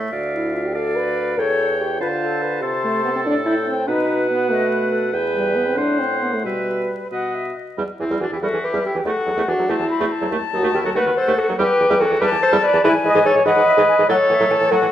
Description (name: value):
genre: quick classical-period movement for wind quintet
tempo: 95 BPM (dotted quarters)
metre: 6/8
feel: rubato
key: E minor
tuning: A4 = 441 Hz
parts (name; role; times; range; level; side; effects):
- concert flute; melody; 0.0-14.9 s; A4 to B5; -24 LUFS; left 5 dB; none
- bright oboe; second line; 0.0-14.9 s; C4 to A5; -26 LUFS; left 4 dB; none
- bright clarinet; accompaniment; 0.0-14.9 s; D#3 to D5; -26 LUFS; right 5 dB; none
- warm French horn; accompaniment; 0.0-14.9 s; G3 to D#5; -20 LUFS; equal; none
- mellow bassoon; bass; 0.0-14.9 s; D2 to D3; -23 LUFS; right 2 dB; none
room: wet recital hall reverb, RT60 1.5 s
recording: minimal, uncompressed stereo recording, vinyl crackle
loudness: -16 LUFS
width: side -11 dB against mid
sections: 0.0-7.8 A section; 7.8-14.9 B section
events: none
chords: 0.1 Dm; 1.4 C#dim/E; 2.0 Dm7; 2.6 Am/C; 3.9 B; 5.1 Em; 5.8 F#dim/A; 6.4 Em/B; 7.1 B; 7.8 Em; 9.1 F#m7b5/E; 10.3 D#dim7; 11.6 Em; 12.8 E/G#; 14.1 F#m7/A